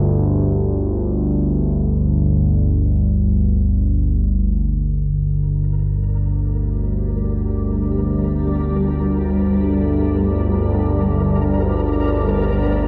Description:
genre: dark ambient drone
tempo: free time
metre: none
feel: none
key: G minor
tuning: A4 = 439 Hz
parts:
  - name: analog drone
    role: drone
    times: 0.0-12.9 s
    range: G1 to D2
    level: -19 LUFS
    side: equal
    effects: chorus
  - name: granular cloud pad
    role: sustained chords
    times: 6.3-12.9 s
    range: G3 to G4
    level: -25 LUFS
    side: equal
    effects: built-in reverb
  - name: flickering grainy texture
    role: texture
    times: 5.7-12.9 s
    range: Bb4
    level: -35 LUFS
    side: equal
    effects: built-in reverb
room: wet cathedral reverb, RT60 5.6 s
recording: worn, warbling old tape, cassette tape, warbly pitch drift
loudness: -19 LUFS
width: mono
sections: 0.0-5.1 A section; 5.1-12.9 B section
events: fade-in on synth texture 5.1-12.9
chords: 0.0 G5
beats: free time

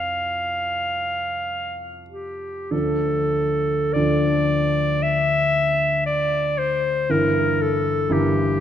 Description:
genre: classical, romantic duo for clarinet and grand piano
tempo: 46-60 BPM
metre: 4/4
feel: rubato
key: D minor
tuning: A4 = 440 Hz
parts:
  - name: clear clarinet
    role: melody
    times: 0.0-8.6 s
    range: G4 to F5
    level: -21 LUFS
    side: equal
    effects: none
  - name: warm concert grand piano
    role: accompaniment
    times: 0.0-8.6 s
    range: G1 to Bb4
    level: -23 LUFS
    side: left 1 dB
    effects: none
room: wet concert hall reverb, RT60 1.7 s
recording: none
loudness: -19 LUFS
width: side -10 dB against mid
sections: 0.0-2.7 A section; 2.7-8.6 B section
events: none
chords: 0.0 F; 2.7 Dm; 7.1 Edim/G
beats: 0.23 1.47 | 2.73 3.96 5.03 6.06 | 7.10 8.10

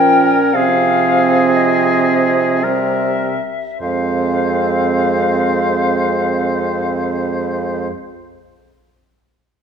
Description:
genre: classical, slow romantic movement for wind quintet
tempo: 49-64 BPM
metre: 3/4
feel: rubato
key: F minor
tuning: A4 = 440 Hz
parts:
  - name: silver concert flute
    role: melody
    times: 0.0-7.9 s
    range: Eb5 to G5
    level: -19 LUFS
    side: left 3 dB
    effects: none
  - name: clear oboe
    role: second line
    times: 0.0-7.9 s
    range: Ab4 to C5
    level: -20 LUFS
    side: left 2 dB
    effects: none
  - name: mellow French horn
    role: accompaniment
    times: 0.0-7.9 s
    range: F3 to Ab3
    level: -22 LUFS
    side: right 2 dB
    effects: none
  - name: warm clarinet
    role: accompaniment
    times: 0.0-7.9 s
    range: C4 to Db4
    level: -20 LUFS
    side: right 7 dB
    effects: none
  - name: warm bassoon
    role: bass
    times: 0.0-7.9 s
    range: F2 to C3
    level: -20 LUFS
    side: right 2 dB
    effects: none
room: moderate scoring stage reverb, RT60 1.6 s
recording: minimal, uncompressed stereo recording, faint mains hum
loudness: -13 LUFS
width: side -7 dB against mid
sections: 0.0-3.8 A section; 3.8-7.2 B section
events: slowing down 0.0-3.8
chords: 0.0 Bbm; 0.5 Fm/C; 2.6 C7; 3.8 Fm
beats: | 0.54 1.54 2.63 | 3.81 4.95 6.09

